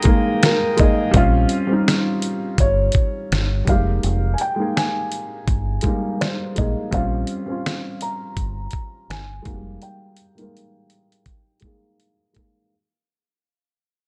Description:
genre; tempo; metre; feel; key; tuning
lo-fi hip hop; 83 BPM; 4/4; swing 56% on 16ths; Bb dorian; A4 = 440 Hz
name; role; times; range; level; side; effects
felt-muted upright piano; melody; 0.0-11.9 s; Bb3 to Bb5; -28 LUFS; equal; low-pass filter, slapback echo
felt-muted upright piano; accompaniment; 0.0-12.7 s; G3 to Bb4; -25 LUFS; equal; low-pass filter
pipe organ, full organ; sustained chords; 0.0-1.1 s; Ab3 to Eb6; -32 LUFS; equal; low-pass filter
dusty soul sampler-style drum kit; drums; 0.0-12.5 s; hi-hat, kick drum, snare drum; -22 LUFS; equal; none
deep dub fingered electric bass; bass; 1.1-9.8 s; F1 to Bb1; -24 LUFS; equal; none
room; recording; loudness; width
small room ambience; none; -20 LUFS; mono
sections
0.0-1.1 A section; 1.1-12.7 B section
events
break 0.0-1.1, 9.8-12.7; fade-out 1.1-12.7; filter sweep 1.1-12.7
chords
0.0 Fm11 (rootless); 1.1 Bbm69 (rootless); 3.7 Fm11; 6.9 Bbm69; 9.5 Fm11 (rootless)

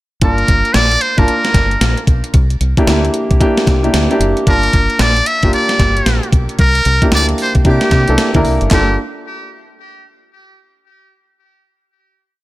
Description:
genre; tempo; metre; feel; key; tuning
R&B, new jack swing; 113 BPM; 4/4; swing 63% on 16ths; G dorian; A4 = 436 Hz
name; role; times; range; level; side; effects
trumpet with metal mute; melody; 0.2-9.0 s; G4 to E5; -16 LUFS; equal; none
warm baby grand piano; accompaniment; 0.2-9.0 s; Bb3 to A5; -17 LUFS; equal; none
deep dub fingered electric bass; bass; 0.2-9.0 s; F#1 to C3; -16 LUFS; equal; tube saturation
gated 80s digital drum machine; drums; 0.2-8.9 s; handclaps, hi-hat, kick drum, snare drum; -14 LUFS; equal; gated reverb, gated reverb snare
room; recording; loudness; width
little or no reverb; none; -10 LUFS; side -17 dB against mid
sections
0.2-8.7 verse; 8.7-10.8 final chord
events
none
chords
0.2 Gm7; 2.3 C9; 4.5 Gm7; 6.6 C9; 8.7 Gm7

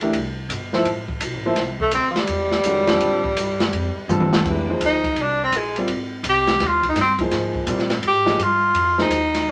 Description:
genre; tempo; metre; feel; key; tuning
modal jazz; 167 BPM; 4/4; swing 65% on 8ths; F dorian from 4.4 s; A4 = 439 Hz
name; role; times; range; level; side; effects
warm concert grand piano; accompaniment; 0.0-9.1 s; D3 to Eb5; -25 LUFS; equal; none
upright bass; bass; 0.0-9.5 s; G1 to Bb2; -32 LUFS; equal; none
open jazz drum kit; drums; 0.0-9.4 s; crash cymbal, hi-hat, kick drum, ride cymbal, snare drum, toms; -27 LUFS; equal; none
clear tenor saxophone; melody; 1.8-9.5 s; F3 to G4; -21 LUFS; equal; none
room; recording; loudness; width
moderate studio reverb, RT60 0.5 s; none; -20 LUFS; mono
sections
0.0-4.4 A section; 4.4-9.5 B section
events
drum fill 4.1-4.4; tenor saxophone solo 4.4-9.5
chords
0.0 Fadd9/G; 4.4 Fm9

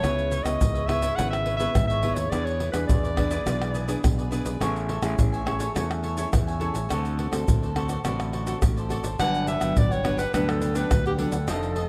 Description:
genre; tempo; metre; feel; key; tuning
samba and choro; 105 BPM; 4/4; straight; unclear; A4 = 440 Hz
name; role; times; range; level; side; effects
clear clarinet; second line; 0.0-4.0, 9.2-11.9 s; G4 to F#5; -30 LUFS; equal; none
cavaquinho; accompaniment; 0.0-11.9 s; D4 to G#5; -35 LUFS; equal; none
nylon-string guitar; accompaniment; 0.0-11.9 s; F2 to A4; -33 LUFS; equal; none
growling fingered electric bass; bass; 0.0-11.8 s; F1 to E2; -32 LUFS; equal; overdrive
tube shaker, surdo, pandeiro and tamborim; percussion; 0.0-11.9 s; none; -28 LUFS; equal; none
room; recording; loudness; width
light reverb; none; -25 LUFS; mono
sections
0.0-11.9 A section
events
clarinet solo 0.0-11.9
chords
0.0 C#m7; 2.3 E7; 4.6 Amaj7; 6.9 D7; 9.2 Gmaj7

